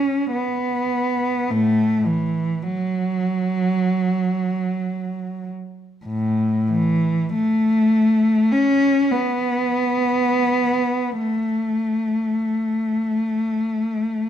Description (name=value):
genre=classical, free, expressive piece for unaccompanied cello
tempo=38-54 BPM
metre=4/4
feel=rubato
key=A major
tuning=A4 = 440 Hz
part: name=warm cello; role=solo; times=0.0-14.3 s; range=A2 to C#4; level=-18 LUFS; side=equal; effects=none
room=wet stone room reverb, RT60 1.1 s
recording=dark, warm production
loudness=-18 LUFS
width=side -10 dB against mid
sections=0.0-14.3 A section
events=none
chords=none